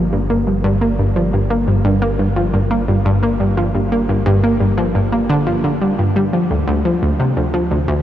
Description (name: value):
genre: ambient, sequencer-driven space music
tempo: 87 BPM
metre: 4/4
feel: straight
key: G minor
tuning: A4 = 440 Hz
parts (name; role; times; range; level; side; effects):
- analog pluck; riff; 0.0-8.0 s; D2 to Bb3; -14 LUFS; equal; chorus, tape echo
- round analog bass; bass; 0.0-8.0 s; G1 to D2; -24 LUFS; equal; none
room: wet huge ambient reverb, RT60 8.0 s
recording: worn, warbling old tape, cassette tape, warbly pitch drift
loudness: -14 LUFS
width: side -11 dB against mid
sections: 0.0-8.0 A section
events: none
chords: 0.0 Gm7; 6.3 Dm